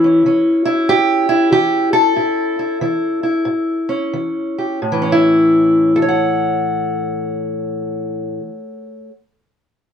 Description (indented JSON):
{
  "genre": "acoustic country blues, solo or duo",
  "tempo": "86-96 BPM",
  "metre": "4/4",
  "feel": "swing 64% on 8ths",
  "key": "A mixolydian",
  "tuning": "A4 = 440 Hz",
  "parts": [
    { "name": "fingerpicked steel-string acoustic guitar", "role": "solo", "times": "0.0-9.2 s", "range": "A2 to F#5", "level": "-14 LUFS", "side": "equal", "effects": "none" }
  ],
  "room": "moderate studio reverb, RT60 0.6 s",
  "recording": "dark, warm production",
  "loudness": "-14 LUFS",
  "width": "side -8 dB against mid",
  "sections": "0.0-4.8 A section; 4.8-7.6 B section",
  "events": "slowing down 0.0-4.8",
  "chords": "0.0 A7; 4.8 A6"
}